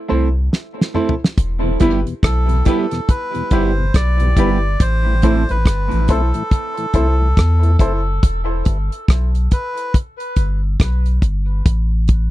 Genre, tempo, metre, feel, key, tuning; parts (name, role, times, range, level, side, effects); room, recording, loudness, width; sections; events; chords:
dub reggae; 70 BPM; 4/4; swing 60% on 16ths; E minor; A4 = 440 Hz
semi-hollow electric guitar; accompaniment; 0.1-5.4 s; G3 to A4; -23 LUFS; right 8 dB; phaser, high-pass filter, tape echo
bright baby grand piano; stabs; 0.1-8.0 s; E4 to C5; -24 LUFS; left 2 dB; high-pass filter, tape echo
warm sub bass; bass; 0.1-12.3 s; E1 to E2; -16 LUFS; equal
damped 70s drum kit; drums; 0.5-12.3 s; hi-hat, kick drum, rim click, snare drum, toms; -14 LUFS; equal
tonewheel organ; accompaniment; 1.6-12.2 s; E2 to E4; -25 LUFS; left 4 dB; overdrive, slow rotary speaker, high-pass filter
melodica; melody; 2.2-10.0 s; A4 to D5; -24 LUFS; equal; tape echo
little or no reverb; dry, close 1970s-style studio recording; -14 LUFS; side -16 dB against mid
0.0-1.4 A section; 1.4-12.3 B section
drum fill 0.5-1.4; filter sweep 4.8-12.3
0.0 Am; 1.4 Em; 4.8 Am; 8.2 Em; 11.7 Am